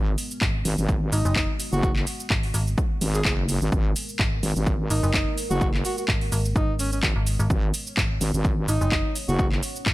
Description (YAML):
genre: bass house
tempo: 127 BPM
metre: 4/4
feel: swing 55% on 16ths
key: G# minor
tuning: A4 = 440 Hz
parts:
  - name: dark analog pad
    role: sustained chords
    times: 0.0-9.9 s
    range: G#3 to C#5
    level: -38 LUFS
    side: equal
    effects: wide subtle chorus, sidechain pumping
  - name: wobble bass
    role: bass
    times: 0.0-9.6 s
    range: F#1 to G#1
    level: -24 LUFS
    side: equal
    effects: chorus, sidechain pumping
  - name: house drum kit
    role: drums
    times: 0.2-9.9 s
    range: cabasa, handclaps, hi-hat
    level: -28 LUFS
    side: equal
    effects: overdrive
  - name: metallic FM bass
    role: bass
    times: 0.4-9.9 s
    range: F#1 to G#1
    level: -24 LUFS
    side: equal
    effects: overdrive, sidechain pumping
  - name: electronic kick drum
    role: drums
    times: 0.4-9.9 s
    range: none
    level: -25 LUFS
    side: equal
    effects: overdrive
  - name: warm alto saxophone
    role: melody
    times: 1.1-9.5 s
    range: C#4 to G#4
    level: -30 LUFS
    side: equal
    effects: dub echo
room: little or no reverb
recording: none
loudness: -21 LUFS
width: side -18 dB against mid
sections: 0.0-9.9 A section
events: none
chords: 0.0 G#madd9